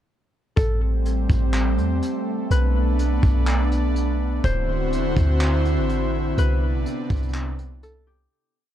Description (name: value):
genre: hip hop, atmospheric cloud-rap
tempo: 124 BPM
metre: 4/4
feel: half-time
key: A dorian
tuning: A4 = 440 Hz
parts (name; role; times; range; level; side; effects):
- concert harp; melody; 0.6-8.7 s; G4 to C5; -32 LUFS; left 4 dB; low-pass filter, ping-pong delay
- airy breathy pad; sustained chords; 0.6-8.3 s; C3 to C5; -25 LUFS; equal; chorus, sidechain pumping
- clean 808-style bass; bass; 0.6-8.3 s; D1 to E2; -21 LUFS; equal; none
- vintage brush drum kit; drums; 0.6-7.9 s; handclaps, hi-hat, kick drum; -27 LUFS; equal; none
room: small room ambience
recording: dark, warm production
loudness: -19 LUFS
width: side -11 dB against mid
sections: 0.6-8.3 verse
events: fade-out 6.4-8.3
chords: 0.6 Am7; 2.5 Bm7; 4.4 D9; 6.4 Cmaj9